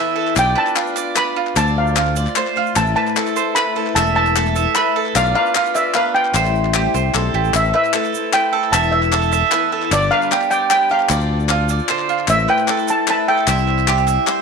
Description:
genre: indie folk with a building arrangement.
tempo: 151 BPM.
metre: 3/4.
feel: straight.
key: A minor.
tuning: A4 = 439 Hz.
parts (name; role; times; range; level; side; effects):
picked twelve-string acoustic guitar; accompaniment; 0.0-14.4 s; E2 to C5; -23 LUFS; left 14 dB; none.
mandolin; arpeggios; 0.0-14.4 s; F4 to E5; -20 LUFS; right 10 dB; none.
group handclap; percussion; 0.3-14.4 s; none; -23 LUFS; left 13 dB; none.
steel pan; melody; 0.4-14.0 s; D5 to B5; -18 LUFS; right 1 dB; none.
fingered electric bass; bass; 0.4-14.2 s; E1 to D2; -20 LUFS; left 1 dB; none.
tube shaker; percussion; 0.4-14.3 s; none; -33 LUFS; right 14 dB; none.
room: moderate echo chamber reverb, RT60 1.9 s, small room ambience.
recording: 1960s-style stereo with parts hard left and right.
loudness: -14 LUFS.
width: side -5 dB against mid.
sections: 0.0-7.5 A section; 7.5-14.4 A section.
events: none.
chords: 0.4 Bdim; 1.6 Dm7; 2.8 Amadd9; 4.0 Esus4; 5.2 Bdim; 6.3 Am7; 7.5 Amadd9; 8.7 Esus4; 9.9 G; 11.1 Dm7; 12.3 Amadd9; 13.5 C.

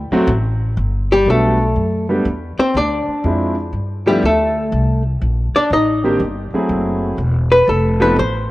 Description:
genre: jazz, small-group swing and bop.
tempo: 122 BPM.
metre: 4/4.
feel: swing 66% on 8ths.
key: G major.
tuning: A4 = 440 Hz.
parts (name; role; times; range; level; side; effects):
upright bass; bass; 0.0-8.5 s; E1 to G2; -19 LUFS; equal; none.
warm concert grand piano; accompaniment; 0.1-8.2 s; Eb3 to A4; -19 LUFS; right 1 dB; cassette tape.
archtop guitar, miked and amplified; melody; 1.1-8.5 s; G3 to Eb5; -15 LUFS; left 1 dB; cassette tape.
room: moderate spring reverb, RT60 2.7 s.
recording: home recording on cassette.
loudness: -14 LUFS.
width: side -18 dB against mid.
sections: 0.8-8.5 A section.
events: none.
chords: 0.0 D7; 0.8 Gmaj7; 2.7 Dm7b5; 3.7 G7; 4.7 Cm7; 6.7 F#m7b5; 7.7 F7#11.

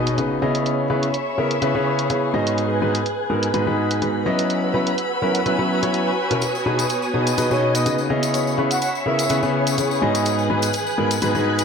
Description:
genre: piano house.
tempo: 125 BPM.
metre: 4/4.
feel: swing 54% on 16ths.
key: unclear.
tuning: A4 = 440 Hz.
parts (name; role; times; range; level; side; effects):
analog string pad; sustained chords; 0.0-11.6 s; B4 to F#6; -26 LUFS; right 2 dB; ensemble chorus.
warm grand piano; riff; 0.0-11.6 s; G#2 to D#5; -20 LUFS; left 1 dB; none.
impact and riser; sound effects; 0.0-0.7, 10.8-11.6 s; none; -40 LUFS; equal; none.
dark studio string section; texture; 0.0-11.6 s; B3 to B5; -27 LUFS; left 1 dB; none.
electronic hi-hat; drums; 0.1-11.6 s; none; -28 LUFS; right 3 dB; low-pass filter on hats, low-pass filter on snare, low-pass filter on room.
tambourine; percussion; 6.4-11.6 s; none; -31 LUFS; left 5 dB; none.
breathy flute-like synth lead; melody; 7.5-9.4 s; C#5 to F#5; -26 LUFS; right 2 dB; chorus, cassette tape, ping-pong delay.
room: moderate plate reverb, RT60 1.6 s.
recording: none.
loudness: -18 LUFS.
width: side -6 dB against mid.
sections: 0.0-11.6 A section.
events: impact 0.0-0.7; filter sweep on analog synth pad 0.0-11.6.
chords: 0.4 G#m7; 4.5 F#7sus4; 6.4 B6; 8.1 G#m7.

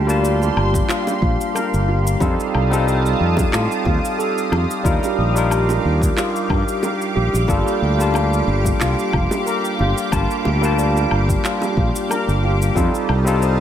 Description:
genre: sunset chillout.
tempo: 91 BPM.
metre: 4/4.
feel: swing 54% on 16ths.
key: G minor.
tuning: A4 = 436 Hz.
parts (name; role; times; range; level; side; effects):
barky tine electric piano; accompaniment; 0.0-13.6 s; G3 to A5; -21 LUFS; equal; auto-pan, tape echo.
lush unison pad; sustained chords; 0.0-13.6 s; G4 to Eb6; -24 LUFS; equal; chorus, phaser.
fretless electric bass; bass; 0.0-13.6 s; F1 to A2; -19 LUFS; equal; none.
electronic shaker, woodblock and handclaps; drums; 0.1-13.6 s; none; -28 LUFS; left 1 dB; studio reverb.
steel pan; arpeggios; 0.2-13.6 s; F4 to D5; -28 LUFS; left 1 dB; tape echo.
bongos; percussion; 0.4-13.4 s; none; -29 LUFS; right 3 dB; none.
electronic kick drum; drums; 0.7-12.9 s; none; -22 LUFS; equal; studio reverb.
room: light reverb.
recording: none.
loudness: -16 LUFS.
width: side -10 dB against mid.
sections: 0.0-13.6 A section.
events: none.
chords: 0.0 Gm7; 2.2 F9; 4.8 Ebmaj9; 7.5 Gm7; 12.8 F9.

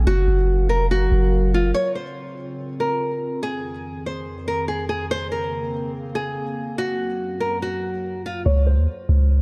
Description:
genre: hip hop, trap.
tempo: 143 BPM.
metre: 4/4.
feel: half-time.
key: unclear.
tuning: A4 = 441 Hz.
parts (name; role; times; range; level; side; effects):
nylon-string guitar; melody; 0.0-9.3 s; F4 to Db5; -27 LUFS; equal; low-pass filter.
warbly tape-like pad; sustained chords; 0.0-8.4 s; F2 to F5; -33 LUFS; equal; chorus, built-in reverb.
long sustained 808-style bass; bass; 0.0-1.7, 8.5-9.4 s; F1 to Eb2; -20 LUFS; equal; none.
room: light reverb, studio reverb.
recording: dark, warm production.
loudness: -23 LUFS.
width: mono.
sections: 0.0-1.7 A section; 1.7-8.5 B section.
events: none.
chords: 0.1 Gbmaj7; 1.7 Dbmaj7; 3.4 Fm7; 5.1 Bbmadd9; 6.8 Gb; 8.5 Db5.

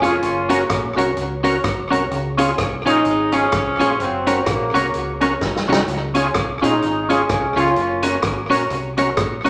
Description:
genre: ska.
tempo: 127 BPM.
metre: 4/4.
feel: swing 58% on 8ths.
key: unclear.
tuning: A4 = 440 Hz.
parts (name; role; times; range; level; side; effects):
mellow horn section; melody; 0.0-8.5 s; Db3 to F4; -22 LUFS; equal; none.
clean electric guitar; accompaniment; 0.0-9.5 s; Db4 to Db5; -24 LUFS; equal; tape echo.
overdriven tonewheel organ; stabs; 0.0-9.5 s; Db4 to Bb4; -26 LUFS; equal; chorus vibrato, slow rotary speaker.
deep dub fingered electric bass; bass; 0.0-9.5 s; F1 to Db2; -31 LUFS; equal; none.
swinging big-band drum kit; drums; 0.0-9.5 s; hi-hat, kick drum, rim click, snare drum; -27 LUFS; equal; tape echo.
room: wet large studio reverb, RT60 0.8 s.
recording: none.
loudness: -19 LUFS.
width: mono.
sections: 0.0-9.5 A section.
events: drum fill 5.4-5.9.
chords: 0.2 Gb; 2.1 Db; 4.0 Gb; 5.9 Db; 7.8 Gb.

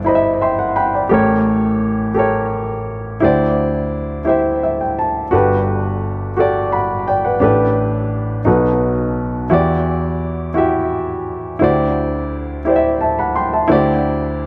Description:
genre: gospel.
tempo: 57 BPM (dotted quarters).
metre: 6/8.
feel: straight.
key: unclear.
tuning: A4 = 436 Hz.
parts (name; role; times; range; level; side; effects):
warm baby grand piano; solo; 0.0-14.5 s; G1 to C6; -17 LUFS; equal; tape echo.
room: moderate spring reverb, RT60 1.3 s.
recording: echo-heavy mix.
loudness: -17 LUFS.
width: mono.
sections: 0.0-13.7 A section.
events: grand piano fill 0.1-1.1, 4.3-5.3.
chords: 0.0 Cmaj9/G; 1.1 A7b9; 3.2 D9sus4; 5.3 Gmaj9; 7.4 A9sus4; 8.5 B7; 9.5 Em9; 11.6 D9sus4.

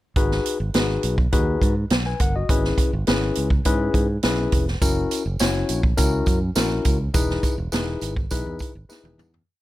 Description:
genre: uptempo 1960s-style soul.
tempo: 103 BPM.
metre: 4/4.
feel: straight.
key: G# minor.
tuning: A4 = 436 Hz.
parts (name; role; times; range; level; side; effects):
bright tine electric piano; accompaniment; 0.2-9.3 s; C#4 to G#5; -25 LUFS; left 4 dB; none.
fingered electric bass; bass; 0.2-9.4 s; E1 to G#2; -25 LUFS; equal; none.
swinging big-band drum kit; drums; 0.2-9.5 s; hi-hat, kick drum, snare drum, toms; -22 LUFS; right 1 dB; none.
tambourine; percussion; 4.8-9.3 s; none; -33 LUFS; right 5 dB; none.
room: light reverb, small room ambience.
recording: none.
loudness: -19 LUFS.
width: side -16 dB against mid.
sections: 0.2-9.5 verse.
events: fade-out 7.1-9.5; drum fill 8.9-9.5.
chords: 0.2 G#m7; 2.5 C#m7/G#; 4.8 F#7; 7.1 Emaj7.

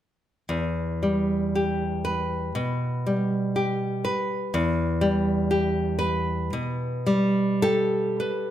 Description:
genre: romantic piece for solo classical guitar.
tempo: 49-62 BPM.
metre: 4/4.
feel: rubato.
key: E minor.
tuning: A4 = 441 Hz.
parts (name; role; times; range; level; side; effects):
nylon-string guitar; solo; 0.5-8.5 s; E2 to B4; -23 LUFS; equal; slapback echo.
room: moderate recital hall reverb, RT60 1.3 s.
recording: none.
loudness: -23 LUFS.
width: side -11 dB against mid.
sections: 0.5-8.5 A section.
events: none.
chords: 0.5 Em.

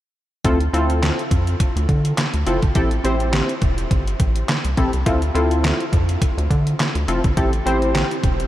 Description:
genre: early-eighties boogie funk.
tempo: 104 BPM.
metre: 4/4.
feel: swing 56% on 16ths.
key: D minor.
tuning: A4 = 440 Hz.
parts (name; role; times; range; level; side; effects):
funky polysynth comp; accompaniment; 0.4-8.2 s; C4 to C5; -22 LUFS; left 1 dB; chorus.
rubbery square bass; bass; 0.4-8.5 s; E1 to D3; -20 LUFS; equal; none.
detuned 8-bit digital drum machine; drums; 0.4-8.5 s; handclaps, hi-hat, kick drum, snare drum; -21 LUFS; equal; none.
room: moderate huge ambient reverb, RT60 7.9 s.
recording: dreamy mix soaked in reverb.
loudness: -17 LUFS.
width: side -14 dB against mid.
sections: 0.4-8.5 A section.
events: none.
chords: 0.4 Dm9; 2.8 Am7; 5.1 Dm9; 7.4 Am7.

